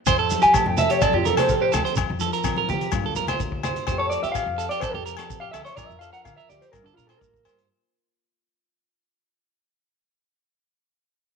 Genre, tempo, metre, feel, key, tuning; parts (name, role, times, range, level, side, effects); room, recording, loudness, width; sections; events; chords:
highlife guitar band; 126 BPM; 4/4; straight; A4 = 440 Hz
nylon-string guitar; accompaniment; 0.1-9.6 s; F2 to G4; -32 LUFS; left 12 dB
electric guitar at the edge of break-up; arpeggios; 0.1-7.7 s; G4 to C5; -26 LUFS; right 12 dB; slapback echo
upright bass; bass; 0.1-7.7 s; D2 to F3; -31 LUFS; equal
crunchy breakbeat drum kit; drums; 0.1-7.7 s; hi-hat, kick drum, rim click; -32 LUFS; left 3 dB
agogo bells; percussion; 0.1-7.6 s; -31 LUFS; left 15 dB
shekere; percussion; 0.1-7.6 s; -31 LUFS; right 7 dB
congas; percussion; 0.3-3.7 s; -32 LUFS; left 1 dB
electric guitar through a small old amp; melody; 0.4-7.6 s; D4 to A5; -21 LUFS; equal
light reverb, studio reverb; 1960s-style stereo with parts hard left and right; -20 LUFS; side -6 dB against mid
0.1-7.7 A section
fade-out 0.1-7.7; clean electric guitar solo 0.1-7.7
0.1 Fadd9; 2.0 Bbadd9/F; 2.9 Gm7